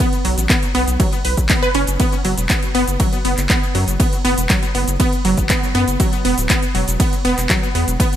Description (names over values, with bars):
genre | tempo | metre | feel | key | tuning
progressive house | 120 BPM | 4/4 | straight | unclear | A4 = 444 Hz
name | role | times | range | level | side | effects
wide unison pluck | arpeggios | 0.0-8.1 s | F#3 to B4 | -20 LUFS | equal | sidechain pumping, ping-pong delay
electronic kick drum | drums | 0.0-8.1 s | none | -18 LUFS | equal | overdrive
house drum kit | drums | 0.0-8.2 s | handclaps, hi-hat, ride cymbal, shaker | -22 LUFS | equal | overdrive
round analog bass | bass | 0.2-8.0 s | D1 to F#2 | -20 LUFS | equal | sidechain pumping
room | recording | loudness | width
light reverb | none | -14 LUFS | side -11 dB against mid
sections
0.0-8.2 A section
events
none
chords
0.0 B5; 2.0 Esus2 (rootless); 6.0 E5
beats
| 0.00 0.50 1.00 1.50 | 2.00 2.50 3.00 3.50 | 4.00 4.50 5.00 5.50 | 6.00 6.50 7.00 7.50 | 8.00